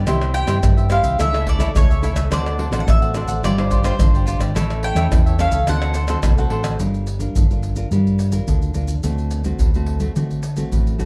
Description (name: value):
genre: samba and choro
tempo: 107 BPM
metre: 4/4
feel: straight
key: unclear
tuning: A4 = 438 Hz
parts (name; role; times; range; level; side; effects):
- cavaquinho; accompaniment; 0.0-6.8 s; D4 to F#5; -31 LUFS; equal; none
- nylon-string guitar; accompaniment; 0.0-11.1 s; G2 to C5; -27 LUFS; equal; none
- fingered electric bass; bass; 0.0-11.1 s; G1 to D3; -23 LUFS; equal; none
- maracas, surdo, pandeiro and tamborim; percussion; 0.1-11.1 s; none; -22 LUFS; equal; none
- mandolin; melody; 0.3-6.5 s; C5 to G5; -26 LUFS; equal; plate reverb
room: light reverb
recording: dark, warm production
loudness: -19 LUFS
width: mono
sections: 0.0-6.8 A section; 6.8-11.1 B section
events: none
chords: 0.1 C; 1.2 A/C#; 2.3 D7; 3.4 G7sus4; 4.6 A; 5.7 D7; 6.8 Gm7; 9.0 D7